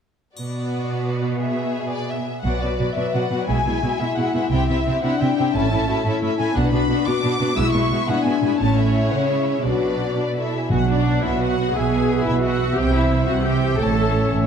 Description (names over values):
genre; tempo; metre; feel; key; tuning
cinematic, heroic adventure film score; 116 BPM (dotted quarters); 6/8; straight; B dorian; A4 = 439 Hz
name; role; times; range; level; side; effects
rich symphonic violin section; melody; 0.4-14.5 s; C#5 to E6; -28 LUFS; left 4 dB; none
rich symphonic violin section; second line; 0.4-14.3 s; E4 to A5; -28 LUFS; left 3 dB; none
rich symphonic viola section; accompaniment; 0.4-14.3 s; F#3 to A4; -26 LUFS; equal; none
rich symphonic cello section; bass; 0.4-14.5 s; A2 to C#3; -24 LUFS; right 3 dB; none
triangle; percussion; 0.4-1.0 s; none; -43 LUFS; left 3 dB; none
dark studio double bass section; bass; 2.4-14.5 s; A1 to C2; -24 LUFS; right 3 dB; none
warm French horn section; sustained chords; 3.0-14.5 s; E3 to C#5; -24 LUFS; left 4 dB; none
clear clarinet; second line; 10.7-14.5 s; B4 to C#5; -31 LUFS; equal; none
mellow cor anglais; second line; 10.7-14.5 s; E5 to F#5; -30 LUFS; right 1 dB; none
timpani; percussion; 10.7-11.2 s; B2; -26 LUFS; left 1 dB; none
room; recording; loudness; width
moderate scoring stage reverb, RT60 1.6 s; dark, warm production; -18 LUFS; side -7 dB against mid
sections
0.4-2.4 A section; 2.4-10.7 B section; 10.7-14.5 B section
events
none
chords
0.4 Bm; 3.5 E/B; 4.5 C; 5.5 A; 6.6 Bm; 7.6 E/B; 8.6 A; 9.6 Bm; 11.7 E/B; 12.8 C; 13.8 A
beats
| 0.37 0.89 | 1.40 1.92 | 2.45 2.97 | 3.48 4.00 | 4.51 5.03 | 5.54 6.05 | 6.55 7.07 | 7.57 8.08 | 8.60 9.12 | 9.65 10.18 | 10.71 11.23 | 11.74 12.26 | 12.77 13.29 | 13.80 14.31